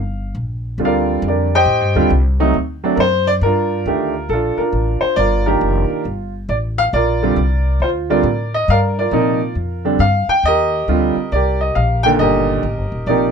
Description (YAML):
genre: jazz piano trio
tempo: 137 BPM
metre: 4/4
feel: swing 65% on 8ths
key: G minor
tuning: A4 = 440 Hz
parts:
  - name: warm baby grand piano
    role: melody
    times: 0.0-13.3 s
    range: Bb2 to G5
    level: -16 LUFS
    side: right 1 dB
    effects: none
  - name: upright bass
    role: bass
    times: 0.0-13.3 s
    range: Eb1 to Bb2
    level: -19 LUFS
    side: left 1 dB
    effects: none
room: light reverb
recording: close, detailed microphones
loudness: -14 LUFS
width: side -6 dB against mid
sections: 0.0-3.4 A section; 3.4-13.3 B section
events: grand piano solo 0.0-3.4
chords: 0.0 Gm7; 1.7 Am7b5; 2.5 D7; 3.4 Gm7; 10.4 Cm7